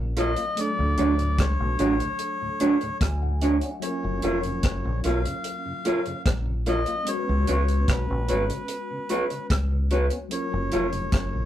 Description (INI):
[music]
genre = lovers rock reggae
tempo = 74 BPM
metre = 4/4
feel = straight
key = F# major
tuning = A4 = 436 Hz
[part]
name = mellow tine electric piano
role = accompaniment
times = 0.0-11.5 s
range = F#3 to G#5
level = -33 LUFS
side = left 1 dB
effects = medium stereo tremolo, tape echo
[part]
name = mellow tonewheel organ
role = accompaniment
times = 0.0-11.4 s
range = D2 to E#4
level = -36 LUFS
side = left 2 dB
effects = overdrive
[part]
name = deep dub fingered electric bass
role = bass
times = 0.0-11.5 s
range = E#1 to D2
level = -26 LUFS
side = equal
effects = none
[part]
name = melodica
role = melody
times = 0.2-11.5 s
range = B4 to E#5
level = -30 LUFS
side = left 2 dB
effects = none
[part]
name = mellow electric guitar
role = stabs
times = 0.2-10.9 s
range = D4 to C#5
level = -24 LUFS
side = right 2 dB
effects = none
[part]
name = deep reggae drum kit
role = drums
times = 0.2-11.3 s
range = hi-hat, kick drum, rim click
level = -27 LUFS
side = equal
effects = none
[sound]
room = moderate small room reverb, RT60 0.5 s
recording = rough rehearsal-room recording, tube saturation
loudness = -22 LUFS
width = side -12 dB against mid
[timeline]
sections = 0.0-11.5 A section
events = tine electric piano fill 2.6-3.8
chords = 0.0 F#maj7; 0.6 Dmaj7; 3.8 F#maj7; 7.1 C#7sus4; 10.3 F#maj7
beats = | 0.57 1.39 2.20 3.01 | 3.82 4.63 5.45 6.26 | 7.07 7.88 8.69 9.50 | 10.31 11.12